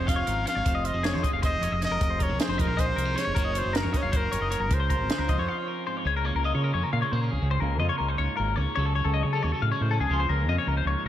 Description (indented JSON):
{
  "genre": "math rock and midwest emo",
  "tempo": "311 BPM (eighths)",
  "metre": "7/8",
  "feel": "straight",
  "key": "Db major",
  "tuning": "A4 = 441 Hz",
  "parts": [
    { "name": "bright trumpet", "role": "melody", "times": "0.0-5.9 s", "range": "Bb4 to F5", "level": "-30 LUFS", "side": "equal", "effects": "slapback echo" },
    { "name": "twelve-string electric guitar", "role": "accompaniment", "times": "0.0-11.1 s", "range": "F2 to A4", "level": "-32 LUFS", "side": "right 4 dB", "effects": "phaser" },
    { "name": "twelve-string electric guitar", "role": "arpeggios", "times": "0.0-11.1 s", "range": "Ab4 to F5", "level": "-30 LUFS", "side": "left 6 dB", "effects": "slapback echo" },
    { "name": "growling fingered electric bass", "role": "bass", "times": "0.0-11.1 s", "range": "F1 to Db3", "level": "-28 LUFS", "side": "equal", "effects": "overdrive" },
    { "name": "compact cocktail drum kit", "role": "drums", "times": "0.1-5.4 s", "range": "hi-hat, kick drum, snare drum", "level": "-28 LUFS", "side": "equal", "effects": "none" }
  ],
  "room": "light reverb, studio ambience",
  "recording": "none",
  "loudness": "-24 LUFS",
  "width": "side -11 dB against mid",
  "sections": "0.0-6.1 A section; 6.1-11.1 B section",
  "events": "break 5.5-6.1",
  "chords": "0.0 Dbmaj7/F; 3.4 Ebm7/Gb; 4.7 Dbmaj7; 6.1 Db6; 8.8 Gbmadd9/Db; 10.1 Db6"
}